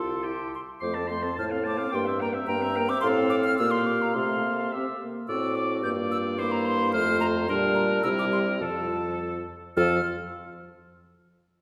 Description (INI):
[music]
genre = quick classical-period movement for wind quintet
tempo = 107 BPM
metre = 2/4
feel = straight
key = F major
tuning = A4 = 440 Hz
[part]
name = hollow concert flute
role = melody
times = 0.0-10.1 s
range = A5 to G6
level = -34 LUFS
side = equal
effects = none
[part]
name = clear oboe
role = second line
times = 0.0-10.0 s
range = G4 to C6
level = -33 LUFS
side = equal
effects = none
[part]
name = mellow French horn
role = accompaniment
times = 0.0-10.0 s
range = F3 to F4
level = -33 LUFS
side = equal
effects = none
[part]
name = mellow clarinet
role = accompaniment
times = 0.0-10.0 s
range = D4 to A5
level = -37 LUFS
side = equal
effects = none
[part]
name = mellow bassoon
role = bass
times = 0.0-10.0 s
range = C2 to C3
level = -32 LUFS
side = equal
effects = none
[sound]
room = wet concert hall reverb, RT60 1.9 s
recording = heard from further back in the room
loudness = -26 LUFS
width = mono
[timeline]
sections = 0.8-9.8 A section; 9.8-10.9 B section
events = none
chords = 0.3 C; 0.8 F; 1.4 F/A; 1.9 C7/G; 3.0 F/A; 3.6 Bb5; 4.2 F/C; 4.7 C; 5.3 D7/A; 5.8 Gm7; 6.4 C7/G; 6.9 F; 7.5 Gm/Bb; 8.0 C7; 8.6 F